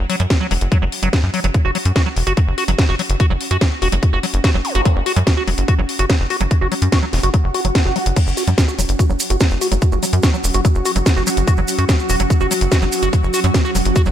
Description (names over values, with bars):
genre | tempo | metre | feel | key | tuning
psychedelic trance | 145 BPM | 4/4 | straight | unclear | A4 = 441 Hz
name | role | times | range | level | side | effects
tight sequencer bass | bass | 0.0-14.1 s | E1 to F#2 | -18 LUFS | equal | none
ethereal airy pad | texture | 0.0-14.1 s | C#4 to F#5 | -28 LUFS | right 2 dB | ensemble chorus, built-in reverb, sidechain pumping
liquid acid bass | riff | 0.1-14.1 s | F#3 to F#4 | -22 LUFS | equal | chorus, auto-pan, sidechain pumping, dub echo
garage drum kit | drums | 0.1-14.0 s | crash cymbal, hi-hat, snare drum | -22 LUFS | equal | none
electronic kick drum | drums | 0.3-14.0 s | none | -15 LUFS | equal | none
zap and swell | sound effects | 4.6-4.8, 7.4-8.2 s | none | -26 LUFS | right 1 dB | none
swarming drone | sustained chords | 9.3-14.1 s | F#3 to F#4 | -23 LUFS | equal | built-in reverb, sidechain pumping
maracas | percussion | 8.2-14.1 s | none | -26 LUFS | right 6 dB | none
room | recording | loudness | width
little or no reverb | none | -14 LUFS | side -10 dB against mid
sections
0.0-14.1 A section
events
fade-in on ambient pad 0.0-14.1; swell 7.4-8.2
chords
0.0 F#5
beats
0.30 0.72 1.13 | 1.54 1.96 2.37 2.79 | 3.20 3.61 4.03 4.44 | 4.85 5.27 5.68 6.10 | 6.51 6.92 7.34 7.75 | 8.16 8.58 8.99 9.41 | 9.82 10.23 10.65 11.06 | 11.47 11.89 12.30 12.72 | 13.13 13.54 13.96